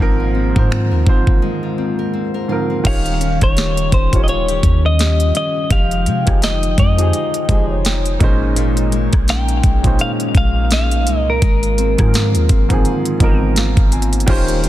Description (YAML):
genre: contemporary R&B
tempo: 84 BPM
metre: 4/4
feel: swing 58% on 16ths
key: unclear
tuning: A4 = 440 Hz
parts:
  - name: dark baby grand piano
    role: accompaniment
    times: 0.0-14.7 s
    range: Ab2 to Ab5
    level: -22 LUFS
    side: right 3 dB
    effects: none
  - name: chorused pulse-width pad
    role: sustained chords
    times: 0.0-14.7 s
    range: Eb3 to G5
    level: -24 LUFS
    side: right 1 dB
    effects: none
  - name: nylon-string guitar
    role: arpeggios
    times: 0.0-14.7 s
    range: Bb2 to C5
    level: -25 LUFS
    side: left 8 dB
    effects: ping-pong delay
  - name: clean 808-style bass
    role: bass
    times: 0.0-14.7 s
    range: Eb1 to C3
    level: -17 LUFS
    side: equal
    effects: none
  - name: trap drum kit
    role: drums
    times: 0.6-14.7 s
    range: crash cymbal, finger snaps, hi-hat, kick drum, rim click, snare drum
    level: -16 LUFS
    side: equal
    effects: soft clipping on snare
  - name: clean electric guitar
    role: melody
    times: 2.9-13.4 s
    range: Bb4 to G5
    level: -21 LUFS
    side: left 1 dB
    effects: ping-pong delay
room: digital ambience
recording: dense, heavily limited modern master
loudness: -13 LUFS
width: side -14 dB against mid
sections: 0.0-2.8 A section; 2.8-14.3 B section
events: break 1.4-2.8; grand piano fill 7.5-8.6, 12.8-14.3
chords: 0.0 Ab69; 2.8 Eb9; 5.7 Fm9; 8.2 Bbm11; 11.4 Ab69